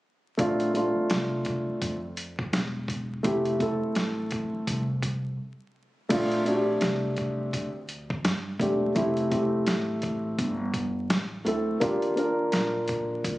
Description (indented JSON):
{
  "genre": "hip hop, jazz-hop",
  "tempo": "84 BPM",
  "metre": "4/4",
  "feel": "swing 61% on 16ths",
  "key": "Bb major",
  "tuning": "A4 = 440 Hz",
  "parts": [
    { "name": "dark grand piano", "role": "accompaniment", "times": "0.4-13.4 s", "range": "A3 to Bb4", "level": "-26 LUFS", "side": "equal", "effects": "none" },
    { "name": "upright bass", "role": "bass", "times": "0.4-13.4 s", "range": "E1 to G2", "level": "-34 LUFS", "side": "equal", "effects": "none" },
    { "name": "boom bap sampler-style drum kit", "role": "drums", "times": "0.4-13.4 s", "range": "crash cymbal, hi-hat, kick drum, snare drum", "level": "-31 LUFS", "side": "equal", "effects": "none" }
  ],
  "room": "light reverb, small room ambience",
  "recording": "recorded on a phone in the room, club reverb, vinyl crackle, compression",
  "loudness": "-25 LUFS",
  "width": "side -17 dB against mid",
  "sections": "0.4-6.1 A section; 6.1-13.4 B section",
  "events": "break 5.4-6.1",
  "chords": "0.4 Bbmaj9; 3.2 Fmaj7; 6.1 Bbmaj9; 9.0 Fmaj9; 11.8 Ebmaj9",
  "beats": "| 0.39 1.10 1.82 2.53 | 3.25 3.96 4.67 5.39 | 6.10 6.82 7.53 8.25 | 8.96 9.67 10.39 11.10 | 11.82 12.53 13.25"
}